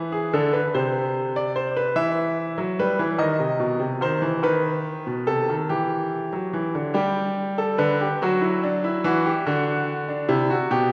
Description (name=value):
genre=classical, baroque-style two-part invention for grand piano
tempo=48 BPM (dotted quarters)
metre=6/8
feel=straight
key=G major from 7.0 s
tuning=A4 = 441 Hz
part: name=bright grand piano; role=solo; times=0.0-10.9 s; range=B2 to E5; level=-23 LUFS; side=equal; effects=none
room=wet church reverb, RT60 2.5 s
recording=none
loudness=-23 LUFS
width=mono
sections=0.0-7.0 A section; 7.0-10.9 B section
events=none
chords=0.0 E7; 0.7 Csus2; 2.0 Em; 3.2 B; 4.4 B7/D#; 5.7 Em; 7.0 G; 8.2 D/F#; 9.5 D7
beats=0.74 | 1.97 3.21 | 4.45 5.70 | 6.95 8.22 | 9.47 10.71